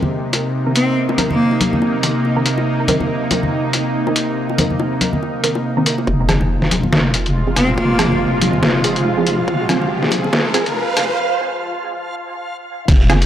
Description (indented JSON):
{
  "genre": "deep dubstep",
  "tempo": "141 BPM",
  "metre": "4/4",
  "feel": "swing 57% on 16ths, half-time",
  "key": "F minor",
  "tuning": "A4 = 440 Hz",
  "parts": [
    { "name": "bowed-like drone", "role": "sustained chords", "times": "0.0-13.3 s", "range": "C3 to F4", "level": "-20 LUFS", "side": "equal", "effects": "built-in reverb, vintage 12-bit sampler grit" },
    { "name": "bongos and congas", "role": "percussion", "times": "0.0-10.3 s", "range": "none", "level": "-22 LUFS", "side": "left 2 dB", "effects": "none" },
    { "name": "trip hop sampler-style drum kit", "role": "drums", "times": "0.3-13.3 s", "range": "crash cymbal, hi-hat, rim click, snare drum", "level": "-19 LUFS", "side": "left 1 dB", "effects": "none" },
    { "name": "filtered dub chord stab", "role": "stabs", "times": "0.7-13.2 s", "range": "Eb3 to Bb4", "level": "-23 LUFS", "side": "right 2 dB", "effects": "phaser, dub echo" },
    { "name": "clear cello", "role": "melody", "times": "0.8-1.7, 7.6-8.4 s", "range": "Bb3 to C4", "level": "-19 LUFS", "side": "equal", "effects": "dub echo" },
    { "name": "deep soft wobble bass", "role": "bass", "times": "6.1-13.3 s", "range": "F1", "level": "-19 LUFS", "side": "equal", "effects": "chorus" },
    { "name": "electronic kick drum", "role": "drums", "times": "6.1-9.6, 12.9-13.0 s", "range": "none", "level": "-14 LUFS", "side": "equal", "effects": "high-pass filter on kick" },
    { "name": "riser", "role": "sound effects", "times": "8.1-11.2 s", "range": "none", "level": "-25 LUFS", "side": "left 1 dB", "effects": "none" },
    { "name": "backwards swelling texture", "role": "texture", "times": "6.9-13.3 s", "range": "F3 to F4", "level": "-23 LUFS", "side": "right 2 dB", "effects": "built-in reverb" }
  ],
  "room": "light reverb, digital ambience",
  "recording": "dry, gritty hardware recording, transformer saturation, high-pass filter",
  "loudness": "-14 LUFS",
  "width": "side -10 dB against mid",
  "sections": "0.0-6.1 A section; 6.1-12.9 B section",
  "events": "filter sweep on synth stab 0.0-6.1, 6.1-12.9; build-up 6.1-12.9; riser 8.1-11.2; break 11.2-12.9",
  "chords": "0.0 Cm7; 6.1 Fm"
}